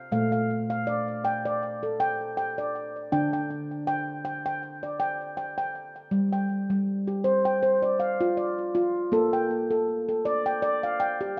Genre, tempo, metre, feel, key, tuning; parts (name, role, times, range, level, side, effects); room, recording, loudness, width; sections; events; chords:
world meditative, meditative tuned percussion; 80 BPM; 4/4; swing 55% on 16ths; A4 = 441 Hz
handpan; solo; 0.0-11.4 s; Bb2 to G5; -27 LUFS; equal; delay
wet echo chamber reverb, RT60 1.4 s, small room ambience; dark, warm production; -27 LUFS; mono
0.0-6.1 A section; 6.1-11.4 B section
0.1 Bb; 3.1 Dsus4; 6.1 G5; 9.1 Bb